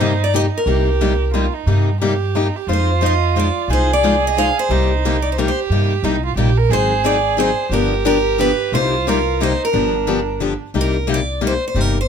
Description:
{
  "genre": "acoustic string swing (jazz manouche)",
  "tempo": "179 BPM",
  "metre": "3/4",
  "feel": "swing 62% on 8ths",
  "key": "C minor",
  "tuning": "A4 = 439 Hz",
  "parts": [
    { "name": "picked steel-string acoustic guitar", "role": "melody", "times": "0.0-12.1 s", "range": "Bb4 to F5", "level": "-20 LUFS", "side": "equal", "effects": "plate reverb" },
    { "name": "warm violin", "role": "second line", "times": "0.0-10.6 s", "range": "D4 to Bb4", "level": "-22 LUFS", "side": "right 10 dB", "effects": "none" },
    { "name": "picked steel-string acoustic guitar", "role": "accompaniment", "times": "0.0-12.0 s", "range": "C3 to C5", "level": "-20 LUFS", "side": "left 6 dB", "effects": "none" },
    { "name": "upright bass", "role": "bass", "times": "0.0-12.1 s", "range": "G1 to G2", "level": "-19 LUFS", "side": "right 1 dB", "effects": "none" }
  ],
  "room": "light reverb",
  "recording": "close, detailed microphones",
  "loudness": "-15 LUFS",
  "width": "side -7 dB against mid",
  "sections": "0.0-10.7 A section; 10.7-12.1 A section",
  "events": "none",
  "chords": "0.0 Cm7; 2.7 Fm7; 4.7 Cm7; 6.7 Ab7; 7.7 G7#9; 8.7 Cm7; 9.7 G7#9; 10.7 Cm7"
}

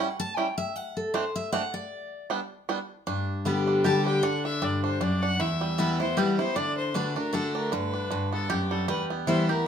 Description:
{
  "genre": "bluegrass",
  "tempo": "155 BPM",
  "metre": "3/4",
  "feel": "swing 56% on 8ths",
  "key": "G major",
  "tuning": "A4 = 440 Hz",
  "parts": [
    { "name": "bluegrass banjo", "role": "melody", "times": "0.0-9.7 s", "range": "D3 to G4", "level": "-31 LUFS", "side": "right 5 dB", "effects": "none" },
    { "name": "picked steel-string acoustic guitar", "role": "accompaniment", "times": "0.0-9.7 s", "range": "E2 to A5", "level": "-27 LUFS", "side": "left 2 dB", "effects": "none" },
    { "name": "clear fiddle", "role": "melody", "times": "3.8-9.7 s", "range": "G4 to A5", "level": "-31 LUFS", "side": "left 3 dB", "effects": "none" }
  ],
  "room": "wet studio reverb, RT60 0.7 s",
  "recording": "minimal, uncompressed stereo recording",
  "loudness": "-25 LUFS",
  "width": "side -8 dB against mid",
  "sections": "0.0-3.1 A section; 3.1-9.7 B section",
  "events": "steel-string acoustic guitar solo 0.0-3.1",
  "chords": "0.0 A7(no3); 0.8 D5; 1.9 N.C.; 3.1 G; 4.2 D; 5.4 Em; 6.6 D; 7.7 G; 8.9 Em"
}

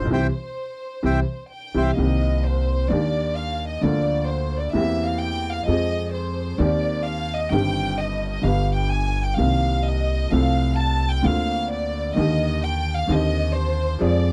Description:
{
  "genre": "tango",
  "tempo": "130 BPM",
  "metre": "4/4",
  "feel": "rubato",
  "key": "C minor",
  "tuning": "A4 = 440 Hz",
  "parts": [
    { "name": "bandoneon", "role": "melody", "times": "0.0-1.9 s", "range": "C5 to G5", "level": "-27 LUFS", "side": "equal", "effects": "none" },
    { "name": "warm chamber violin section", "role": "second line", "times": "0.0-14.3 s", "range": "C5 to A5", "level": "-29 LUFS", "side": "equal", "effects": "none" },
    { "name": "warm upright piano", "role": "accompaniment", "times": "0.0-14.3 s", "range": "G1 to B4", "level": "-26 LUFS", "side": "equal", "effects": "none" },
    { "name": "upright bass", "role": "bass", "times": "0.0-14.3 s", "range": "G1 to F2", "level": "-26 LUFS", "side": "equal", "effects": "none" }
  ],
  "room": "light reverb",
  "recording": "dry, close 1970s-style studio recording",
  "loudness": "-22 LUFS",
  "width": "mono",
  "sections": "0.0-2.0 A section; 2.0-14.3 B section",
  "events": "band accent 0.1-2.0; violin section solo 2.0-14.3",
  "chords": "0.1 C; 2.0 Cm7; 2.9 Ebmaj7; 3.8 Bb/D; 4.8 C7/E; 5.7 Fm; 6.6 Cm7/Eb; 7.5 Cm/G; 8.4 G; 9.4 Cm7; 10.3 F/C; 11.2 Bbadd9/D; 12.2 Ebmaj7; 13.1 Cmadd9/Eb"
}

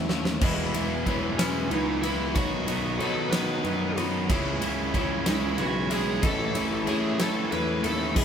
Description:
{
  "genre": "post-rock",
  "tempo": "62 BPM (dotted quarters)",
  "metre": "6/8",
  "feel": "straight",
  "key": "unclear",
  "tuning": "A4 = 438 Hz",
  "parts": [
    { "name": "lead guitar through a small cranked amp", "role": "melody", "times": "0.0-8.2 s", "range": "C#4 to B4", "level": "-31 LUFS", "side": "right 1 dB", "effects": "overdrive" },
    { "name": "muted studio string section", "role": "sustained chords", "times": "0.0-8.2 s", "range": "E4 to D#6", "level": "-40 LUFS", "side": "left 2 dB", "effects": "none" },
    { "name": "felt-muted upright piano", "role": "arpeggios", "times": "0.0-8.2 s", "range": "B4 to E5", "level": "-40 LUFS", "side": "left 1 dB", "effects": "none" },
    { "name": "twangy electric guitar", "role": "arpeggios", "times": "0.0-8.2 s", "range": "E2 to B3", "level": "-39 LUFS", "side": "left 1 dB", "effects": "none" },
    { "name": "overdriven electric guitar", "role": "riff", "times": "0.0-8.2 s", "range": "A2 to E4", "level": "-30 LUFS", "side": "left 5 dB", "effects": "none" },
    { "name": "fuzz picked electric bass", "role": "bass", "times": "0.0-8.2 s", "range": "E1 to B2", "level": "-32 LUFS", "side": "right 1 dB", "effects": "overdrive" },
    { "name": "huge arena drum kit", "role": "drums", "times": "0.1-8.2 s", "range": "crash cymbal, kick drum, ride cymbal, snare drum", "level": "-30 LUFS", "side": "equal", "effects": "none" },
    { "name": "cranked stack guitar", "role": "riff", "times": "0.4-8.2 s", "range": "A2 to E4", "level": "-31 LUFS", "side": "right 4 dB", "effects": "overdrive" }
  ],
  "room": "moderate studio reverb, RT60 0.5 s",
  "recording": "band playing live in one room",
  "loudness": "-24 LUFS",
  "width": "side -8 dB against mid",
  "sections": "0.0-8.2 A section",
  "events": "drum fill 0.0-0.4",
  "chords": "0.4 E; 2.4 B; 4.3 C#m; 6.2 A"
}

